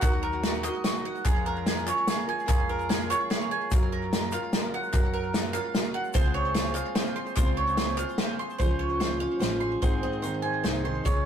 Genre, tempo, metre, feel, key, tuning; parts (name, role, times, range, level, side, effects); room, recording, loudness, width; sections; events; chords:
indie folk with a building arrangement; 147 BPM; 3/4; straight; Db major; A4 = 442 Hz
fingerpicked steel-string acoustic guitar; accompaniment; 0.0, 8.6-11.3 s; Ab2 to Ab4; -30 LUFS; equal
picked steel-string acoustic guitar; accompaniment; 0.0-11.3 s; Ab2 to Bb4; -35 LUFS; equal
bowl-back mandolin; arpeggios; 0.0-11.3 s; Gb4 to C6; -30 LUFS; right 3 dB; digital delay
fingered electric bass; bass; 0.0-11.2 s; Ab1 to Gb2; -35 LUFS; equal
natural country drum kit; drums; 0.0-11.2 s; hi-hat, kick drum, snare drum; -27 LUFS; equal
group handclap; percussion; 0.0-8.1 s; -41 LUFS; left 3 dB
tube shaker; percussion; 0.0-8.6 s; -47 LUFS; left 6 dB
light reverb; rough rehearsal-room recording; -25 LUFS; side -8 dB against mid
0.0-8.6 A section; 8.6-9.8 B section; 9.8-11.3 C section
0.0 Ebm; 1.3 Bbm7/F; 3.7 Gbmaj7; 6.2 Dbmaj7; 9.8 Ab